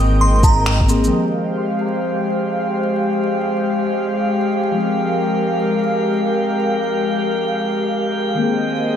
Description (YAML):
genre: future garage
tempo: free time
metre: none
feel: none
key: F minor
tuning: A4 = 440 Hz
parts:
  - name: muted felt-like synth keys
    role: accompaniment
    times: 0.0-9.0 s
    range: Eb3 to Ab4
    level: -24 LUFS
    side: left 2 dB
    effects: chorus, vintage 12-bit sampler grit, sidechain pumping, tape echo
  - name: airy breathy pad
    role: sustained chords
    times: 0.0-9.0 s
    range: Ab3 to G5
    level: -19 LUFS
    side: left 1 dB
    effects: chorus, sidechain pumping
  - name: dark detuned saw bass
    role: bass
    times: 0.0-1.1 s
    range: Ab1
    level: -16 LUFS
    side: equal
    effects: sidechain pumping
  - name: glassy synth bell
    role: melody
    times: 0.2-0.8 s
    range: Bb5 to C6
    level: -22 LUFS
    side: right 1 dB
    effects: chorus, tremolo, analog delay
  - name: electronic kick drum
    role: drums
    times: 0.4-0.9 s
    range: none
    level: -14 LUFS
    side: equal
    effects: overdrive
  - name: electronic shaker and finger snaps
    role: drums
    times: 0.4-1.1 s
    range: none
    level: -24 LUFS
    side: equal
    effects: overdrive, low-pass filter on perc, low-pass filter on snare
  - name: drifting glass-harmonics texture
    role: texture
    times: 1.6-9.0 s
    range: G5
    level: -28 LUFS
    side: right 3 dB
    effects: chorus, built-in reverb
room: wet recital hall reverb, RT60 1.3 s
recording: vinyl crackle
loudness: -16 LUFS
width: side -9 dB against mid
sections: 0.0-1.1 A section; 1.1-9.0 B section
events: band accent 0.7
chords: 0.0 Abadd9; 1.1 Fmadd9; 8.4 Abadd9